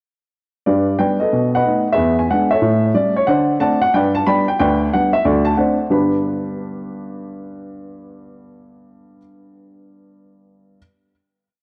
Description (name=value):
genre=jazz, stride piano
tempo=183 BPM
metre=4/4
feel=swing 64% on 8ths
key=G major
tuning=A4 = 440 Hz
part: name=warm upright piano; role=solo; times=0.7-10.8 s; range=D2 to B5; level=-18 LUFS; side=equal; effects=analog delay
room=moderate spring reverb, RT60 2.3 s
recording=cassette tape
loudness=-17 LUFS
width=mono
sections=0.7-5.9 A section; 5.9-8.6 final chord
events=none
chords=0.7 G; 1.3 B7; 2.0 E7; 2.6 A7; 3.3 D7; 3.9 G; 4.6 G/D; 5.3 D7; 5.9 G